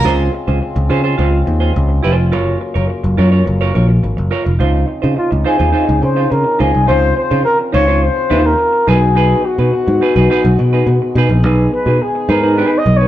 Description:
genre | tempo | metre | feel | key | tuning
disco | 105 BPM | 4/4 | straight | Db major | A4 = 440 Hz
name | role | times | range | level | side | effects
semi-hollow electric guitar | accompaniment | 0.0-13.1 s | Eb4 to Db5 | -18 LUFS | right 3 dB | none
mellow French horn section | sustained chords | 0.0-13.1 s | Db3 to Ab4 | -21 LUFS | left 2 dB | none
picked electric bass | bass | 0.0-13.1 s | F1 to Db3 | -14 LUFS | equal | none
breathy flugelhorn | melody | 5.2-13.1 s | F4 to Eb5 | -15 LUFS | left 1 dB | none
room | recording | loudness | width
moderate studio reverb, RT60 0.8 s | band playing live in one room | -11 LUFS | side -13 dB against mid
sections
0.0-4.6 A section; 4.6-13.1 B section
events
flugelhorn solo 4.6-13.1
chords
0.1 Dbmaj7; 2.3 Gbmaj7; 4.6 Dbmaj9; 8.9 Cb6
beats
| 0.05 0.62 1.19 1.76 | 2.33 2.90 3.47 4.04 | 4.60 5.17 5.74 6.31 | 6.88 7.45 8.02 8.59 | 9.16 9.73 10.30 10.87 | 11.44 12.01 12.58

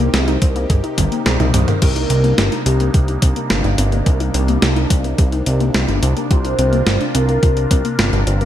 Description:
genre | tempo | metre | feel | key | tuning
synthwave | 107 BPM | 4/4 | straight | C minor | A4 = 440 Hz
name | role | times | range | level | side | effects
phased analog pad | sustained chords | 0.0-8.4 s | C3 to Bb4 | -23 LUFS | right 1 dB | phaser, chorus, sidechain pumping
warbly dusty pluck | arpeggios | 0.0-8.4 s | Bb3 to Ab4 | -25 LUFS | left 3 dB | chorus, ping-pong delay
fat analog bass | bass | 0.0-8.4 s | G1 to C2 | -17 LUFS | equal | sidechain pumping
gated 80s digital drum machine | drums | 0.0-8.4 s | crash cymbal, hi-hat, snare drum, toms | -20 LUFS | equal | gated reverb, gated reverb snare
electronic kick drum | drums | 0.4-7.8 s | none | -15 LUFS | equal | none
warm velvety synth lead | melody | 1.8-7.9 s | G4 to C5 | -22 LUFS | left 1 dB | chorus, ping-pong delay
room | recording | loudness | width
little or no reverb | none | -14 LUFS | side -11 dB against mid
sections
0.0-8.4 A section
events
drum fill 1.0-1.8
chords
0.0 Abadd9 (rootless); 1.8 Cm7; 6.3 Bbadd9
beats
0.14 0.70 1.26 | 1.82 2.38 2.94 3.50 | 4.06 4.62 5.18 5.75 | 6.31 6.87 7.43 7.99

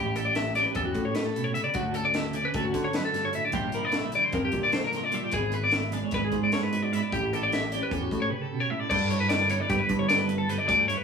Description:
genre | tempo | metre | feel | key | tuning
math rock and midwest emo | 301 BPM (eighths) | 9/8 | straight | unclear | A4 = 441 Hz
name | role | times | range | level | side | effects
twelve-string electric guitar | accompaniment | 0.0-11.0 s | D2 to A4 | -32 LUFS | right 5 dB | tremolo
twelve-string electric guitar | arpeggios | 0.0-11.0 s | F#4 to E5 | -26 LUFS | left 2 dB | harmonic tremolo
picked electric bass | bass | 0.0-10.9 s | G#1 to D3 | -31 LUFS | equal | none
crisp fusion drum kit | drums | 0.2-11.0 s | crash cymbal, hi-hat, kick drum, snare drum | -33 LUFS | left 1 dB | none
room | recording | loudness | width
wet studio ambience, RT60 0.5 s | rough rehearsal-room recording, studio reverb | -24 LUFS | side -6 dB against mid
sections
0.0-8.9 A section; 8.9-11.0 B section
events
none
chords
0.0 A7; 1.7 Dmaj7; 3.5 Bb6; 5.3 E7/G#; 7.1 A7; 8.9 G69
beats
0.15 0.35 0.55 0.75 0.95 1.15 1.35 1.55 | 1.75 1.95 2.15 2.35 2.55 2.75 2.94 3.14 3.34 | 3.54 3.74 3.94 4.14 4.34 4.54 4.74 4.94 5.14 | 5.34 5.54 5.73 5.93 6.13 6.33 6.53 6.73 6.93 | 7.13 7.33 7.52 7.72 7.92 8.12 8.32 8.52 8.71 | 8.91 9.11 9.30 9.50 9.70 9.90 10.09 10.29 10.49 | 10.69 10.88

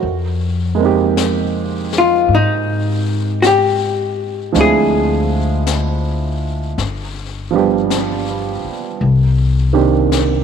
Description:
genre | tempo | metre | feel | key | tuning
jazz ballad | 54 BPM | 4/4 | swing 66% on 8ths | unclear | A4 = 440 Hz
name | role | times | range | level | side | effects
warm upright piano | accompaniment | 0.0-10.4 s | Eb3 to G4 | -18 LUFS | right 10 dB | none
upright bass | bass | 0.0-10.4 s | G1 to Ab2 | -18 LUFS | left 2 dB | none
jazz brush drum kit | drums | 0.0-10.4 s | brushed snare drum, hi-hat, snare drum | -26 LUFS | left 10 dB | none
archtop guitar, miked and amplified | melody | 2.0-6.4 s | Eb4 to Ab4 | -15 LUFS | left 4 dB | none
room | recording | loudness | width
light reverb, studio reverb | 1960s-style stereo with parts hard left and right | -14 LUFS | side -7 dB against mid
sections
0.0-10.4 A section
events
none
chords
0.0 Fm11; 4.5 Dm7b5; 6.8 G7; 9.0 Cm7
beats
| 0.03 1.16 2.29 3.42 | 4.54 5.66 6.78 7.89 | 9.00 10.11

